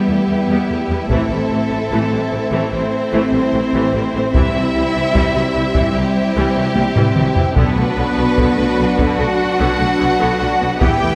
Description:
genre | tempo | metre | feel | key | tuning
cinematic, epic orchestral film score | 74 BPM | 4/4 | straight | unclear | A4 = 439 Hz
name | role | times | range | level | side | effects
clear symphonic violin section | melody | 0.0-11.2 s | G4 to G5 | -25 LUFS | equal | none
warm symphonic violin section | second line | 0.0-11.2 s | B3 to F#4 | -27 LUFS | equal | none
clear symphonic viola section | accompaniment | 0.0-11.1 s | D3 to B3 | -25 LUFS | equal | none
mellow French horn section | sustained chords | 0.0-11.2 s | E3 to E4 | -24 LUFS | equal | none
rich symphonic string section | sustained chords | 0.0-11.2 s | D4 to F#5 | -27 LUFS | equal | none
rich symphonic cello section | bass | 0.0-11.2 s | G3 to G4 | -24 LUFS | equal | none
clear symphonic double bass section | bass | 0.1-11.1 s | A1 to E2 | -25 LUFS | equal | none
solo taiko drums | drums | 1.1-11.2 s | none | -21 LUFS | equal | none
timpani | percussion | 7.6-8.7 s | B2 | -29 LUFS | equal | none
room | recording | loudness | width
moderate scoring stage reverb, RT60 1.9 s | none | -16 LUFS | mono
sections
0.0-11.2 A section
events
drum fill 6.8-7.6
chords
0.0 Em; 1.1 Am; 4.3 C; 7.6 Bm

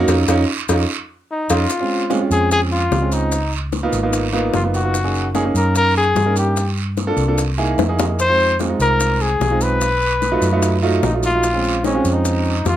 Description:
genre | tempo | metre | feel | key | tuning
Afro-Cuban jazz | 148 BPM | 4/4 | straight | unclear | A4 = 441 Hz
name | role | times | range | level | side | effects
warm grand piano | accompaniment | 0.0-12.5 s | F#3 to G#5 | -20 LUFS | right 2 dB | none
hollow-body short-scale fingered electric bass | bass | 0.0-12.8 s | Gb1 to G2 | -20 LUFS | equal | none
cowbell and bongos | percussion | 0.1-12.8 s | none | -24 LUFS | left 6 dB | none
guiro | percussion | 0.1-12.8 s | none | -30 LUFS | right 8 dB | none
maracas | percussion | 0.1-12.8 s | none | -30 LUFS | left 3 dB | none
breathy trumpet | melody | 1.3-12.8 s | Db4 to C5 | -19 LUFS | left 2 dB | none
room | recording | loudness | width
moderate club reverb, RT60 0.5 s | none | -15 LUFS | side -12 dB against mid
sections
0.0-1.7 A section; 1.7-12.8 B section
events
trumpet solo 0.0-1.7; band accent 0.1-1.7; drum fill 1.3-1.7, 7.8-8.2; grand piano fill 7.4-8.2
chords
0.1 Dbadd9/F; 1.7 Dbmaj7; 3.3 Db13; 4.9 Gb6; 6.6 Gm9; 7.4 C7alt; 8.2 Fm7; 9.8 B7#11; 11.4 Bbm9

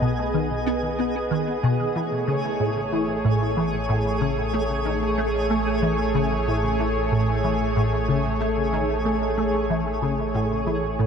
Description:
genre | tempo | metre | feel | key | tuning
ambient, sequencer-driven space music | 93 BPM | 4/4 | straight | A lydian | A4 = 440 Hz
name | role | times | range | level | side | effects
lush unison pad | sustained chords | 0.0-11.1 s | A3 to D#5 | -25 LUFS | equal | chorus
resonant blip pluck | riff | 0.0-11.1 s | A2 to B3 | -25 LUFS | equal | phaser, ensemble chorus, tape echo
round analog bass | bass | 0.0-11.1 s | A1 to B1 | -30 LUFS | equal | none
twinkling granular texture | texture | 0.0-11.1 s | G#4 | -32 LUFS | right 3 dB | built-in reverb
room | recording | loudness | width
wet huge ambient reverb, RT60 9.2 s | dark, warm production | -21 LUFS | side -7 dB against mid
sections
0.0-11.1 A section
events
none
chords
0.0 B; 2.0 Amaj7

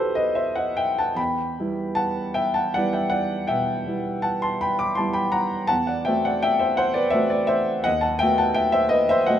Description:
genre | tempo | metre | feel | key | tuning
classical, romantic nocturne for solo piano | 49-57 BPM (dotted quarters) | 12/8 | rubato | E minor | A4 = 440 Hz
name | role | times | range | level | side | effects
warm grand piano | solo | 0.0-9.4 s | B1 to D6 | -20 LUFS | equal | none
room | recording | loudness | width
light reverb | none | -20 LUFS | side -10 dB against mid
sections
0.0-9.4 A section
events
none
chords
0.0 B; 1.2 Em; 5.7 F#m7b5/E; 7.8 B7/D#

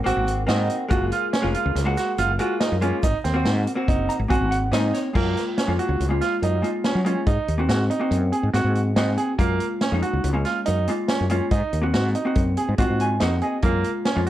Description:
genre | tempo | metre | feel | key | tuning
progressive instrumental, band music in an uneven meter | 141 BPM | 5/4 | straight | Gb lydian | A4 = 441 Hz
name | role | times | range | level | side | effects
vintage hollow-body jazz guitar | accompaniment | 0.0-14.3 s | Ab3 to Bb5 | -25 LUFS | left 1 dB | none
woody fretless electric bass | bass | 0.0-14.3 s | F1 to Gb3 | -23 LUFS | equal | transformer saturation
bright baby grand piano | arpeggios | 0.1-14.3 s | Bb3 to Ab4 | -26 LUFS | right 5 dB | none
vintage drum kit | drums | 0.1-14.3 s | crash cymbal, hi-hat, kick drum, snare drum | -26 LUFS | equal | none
egg shaker | percussion | 0.1-4.3 s | none | -45 LUFS | left 7 dB | none
room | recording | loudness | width
light reverb | worn, warbling old tape, cassette tape, warbly pitch drift | -20 LUFS | side -13 dB against mid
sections
0.0-5.2 A section; 5.2-14.3 B section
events
hollow-body jazz guitar fill 3.9-5.2, 12.8-13.6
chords
0.0 Ab7; 0.9 Gbmaj7; 3.0 Ab7; 5.2 Gbmaj7; 7.3 Ab7; 9.4 Gbmaj7; 11.5 Ab7; 13.6 Gbmaj7

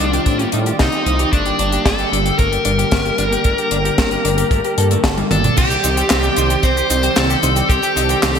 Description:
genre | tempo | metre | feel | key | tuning
synthwave | 113 BPM | 4/4 | straight | C dorian | A4 = 439 Hz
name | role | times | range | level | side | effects
dark smooth lead guitar | melody | 0.0-8.4 s | D4 to C5 | -18 LUFS | left 2 dB | overdrive, digital delay
warm analog pad | sustained chords | 0.0-8.4 s | D3 to D5 | -24 LUFS | right 1 dB | chorus, sidechain pumping
clean electric guitar | arpeggios | 0.0-8.4 s | A3 to A4 | -26 LUFS | right 2 dB | ping-pong delay
dark detuned saw bass | bass | 0.0-8.4 s | G1 to A2 | -20 LUFS | equal | tube saturation, sidechain pumping
tight funk drum kit | drums | 0.1-8.4 s | cabasa, crash cymbal, handclaps, hi-hat, snare drum, toms | -20 LUFS | left 1 dB | gated reverb
kick drum | drums | 0.3-7.8 s | none | -17 LUFS | equal | none
clean electric guitar | riff | 5.6-8.4 s | C4 to C5 | -25 LUFS | right 3 dB | lush chorus, ping-pong delay
room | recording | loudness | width
moderate lush hall reverb, RT60 2.0 s | bright 1980s-style digital production | -13 LUFS | side -7 dB against mid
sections
0.0-5.6 A section; 5.6-8.4 B section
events
drum fill 5.2-5.6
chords
0.0 Cmadd9; 1.3 Gmadd9; 5.6 Cmadd9

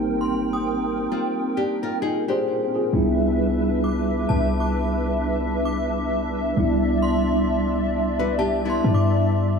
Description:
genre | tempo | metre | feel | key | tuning
R&B | 66 BPM | 4/4 | swing 58% on 16ths | unclear | A4 = 441 Hz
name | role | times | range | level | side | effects
mellow tine electric piano | accompaniment | 0.0-9.6 s | G3 to B#4 | -24 LUFS | right 1 dB | medium stereo tremolo
hollow soft pad | sustained chords | 0.0-9.6 s | B#3 to G5 | -26 LUFS | right 1 dB | ensemble chorus
warm 808-style bass | bass | 0.0-9.6 s | G#1 to G2 | -25 LUFS | left 1 dB | none
synth chime | texture | 0.2-9.6 s | A5 to D#6 | -33 LUFS | left 1 dB | ensemble chorus, tape echo
nylon-string guitar | arpeggios | 1.1-9.6 s | B3 to B4 | -26 LUFS | left 6 dB | tape echo
room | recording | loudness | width
light reverb | none | -20 LUFS | side -5 dB against mid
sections
0.0-2.9 A section; 2.9-9.6 B section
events
none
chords
0.0 G#maj9; 2.9 Cmaj9

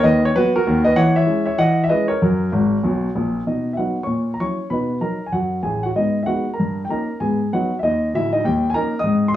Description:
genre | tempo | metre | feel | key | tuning
jazz, stride piano | 193 BPM | 4/4 | swing 62% on 8ths | B major | A4 = 439 Hz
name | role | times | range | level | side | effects
warm grand piano | solo | 0.0-9.4 s | D1 to D#6 | -17 LUFS | equal | none
room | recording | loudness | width
moderate studio reverb, RT60 0.6 s | studio reverb | -17 LUFS | side -12 dB against mid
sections
0.0-3.5 A section; 3.5-9.4 B section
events
grand piano fill 2.5-3.5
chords
0.0 B/D#; 1.0 C#m/E; 2.2 F#; 3.5 B; 4.1 F#7/A#; 4.7 B; 6.0 G#m; 6.6 D#7/G; 7.2 G#m7; 8.4 D#7

